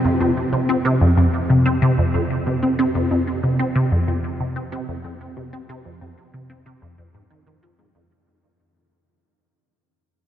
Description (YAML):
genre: ambient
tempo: 93 BPM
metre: 4/4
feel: straight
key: F minor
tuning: A4 = 440 Hz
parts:
  - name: resonant blip pluck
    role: solo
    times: 0.0-8.1 s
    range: F2 to C4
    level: -18 LUFS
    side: equal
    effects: phaser, ensemble chorus, tape echo
room: wet huge ambient reverb, RT60 6.9 s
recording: dark, warm production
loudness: -17 LUFS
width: side -10 dB against mid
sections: 0.0-8.1 A section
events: fade-out 0.0-8.1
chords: none